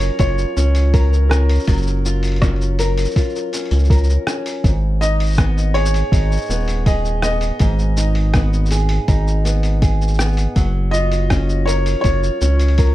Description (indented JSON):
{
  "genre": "folktronica",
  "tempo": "81 BPM",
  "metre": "4/4",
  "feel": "straight",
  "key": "F# major",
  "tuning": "A4 = 440 Hz",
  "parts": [
    { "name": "felt-muted upright piano", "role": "melody", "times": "0.0-12.9 s", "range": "A#4 to D#5", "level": "-24 LUFS", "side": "equal", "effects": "plate reverb, ping-pong delay" },
    { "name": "fingerpicked acoustic archtop guitar", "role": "arpeggios", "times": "0.0-12.9 s", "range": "G#2 to A#4", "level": "-24 LUFS", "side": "left 1 dB", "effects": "plate reverb, ping-pong delay" },
    { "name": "round analog bass", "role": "bass", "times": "0.0-12.9 s", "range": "D#1 to C#2", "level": "-16 LUFS", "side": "equal", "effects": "none" },
    { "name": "lo-fi sampler-style drum kit", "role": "drums", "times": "0.0-12.9 s", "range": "hi-hat, rim click, shaker", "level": "-27 LUFS", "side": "left 1 dB", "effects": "small room ambience" },
    { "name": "electronic kick drum", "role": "drums", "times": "0.2-12.9 s", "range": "none", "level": "-16 LUFS", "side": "equal", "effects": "small room ambience" }
  ],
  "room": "little or no reverb",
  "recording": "dark, warm production",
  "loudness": "-14 LUFS",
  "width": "side -15 dB against mid",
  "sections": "0.0-12.9 A section",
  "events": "none",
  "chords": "0.0 F#maj7; 4.6 G#m; 10.6 F#maj7"
}